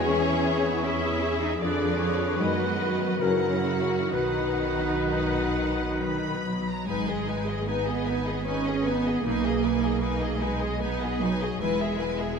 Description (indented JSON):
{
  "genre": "classical, slow romantic movement for symphony orchestra",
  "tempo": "61-80 BPM",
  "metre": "3/4",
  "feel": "rubato",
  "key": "B major, G# minor from 6.9 s",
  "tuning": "A4 = 440 Hz",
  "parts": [
    { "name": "rich studio violin section", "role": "melody", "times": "0.0-12.4 s", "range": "D5 to B5", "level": "-37 LUFS", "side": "left 3 dB", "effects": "none" },
    { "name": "dark clarinet", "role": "second line", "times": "0.0-6.5 s", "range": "F#4 to G#4", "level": "-35 LUFS", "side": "equal", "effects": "none" },
    { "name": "rich studio violin section", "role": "second line", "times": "0.0-12.4 s", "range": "B3 to B4", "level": "-32 LUFS", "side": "left 4 dB", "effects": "none" },
    { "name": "warm oboe", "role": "second line", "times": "0.0-6.5 s", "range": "A#4 to C#5", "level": "-35 LUFS", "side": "right 1 dB", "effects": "none" },
    { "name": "clear studio viola section", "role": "accompaniment", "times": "0.0-12.4 s", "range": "D#4 to E5", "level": "-33 LUFS", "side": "right 1 dB", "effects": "none" },
    { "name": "mellow bassoon", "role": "accompaniment", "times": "0.0-6.5 s", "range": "D3 to F#3", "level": "-33 LUFS", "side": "right 2 dB", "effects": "none" },
    { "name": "concert harp", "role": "arpeggios", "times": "0.0-12.4 s", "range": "E2 to B5", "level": "-35 LUFS", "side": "left 10 dB", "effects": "none" },
    { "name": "clear studio double bass section", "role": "bass", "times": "0.0-12.4 s", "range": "E1 to F#2", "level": "-32 LUFS", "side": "right 3 dB", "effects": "none" },
    { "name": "rich studio cello section", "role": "bass", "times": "0.0-12.4 s", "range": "C#3 to D#4", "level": "-30 LUFS", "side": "right 3 dB", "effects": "none" },
    { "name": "mellow French horn section", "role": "sustained chords", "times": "1.6-4.5 s", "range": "D4 to B4", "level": "-32 LUFS", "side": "left 6 dB", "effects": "none" }
  ],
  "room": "wet concert hall reverb, RT60 2.4 s",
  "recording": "none",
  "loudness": "-24 LUFS",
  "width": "side -6 dB against mid",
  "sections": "0.0-6.9 A section; 6.9-12.4 B section",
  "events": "none",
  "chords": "0.0 C#m/E; 1.6 Fdim7; 2.4 B/F#; 3.2 F#; 4.1 B; 6.9 G#m; 9.3 G#m/B; 11.6 E",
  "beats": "0.07 0.84 | 1.62 2.41 3.22 | 4.13 5.08 6.00 | 6.88 7.68 8.47 | 9.26 10.02 10.82 | 11.61 12.39"
}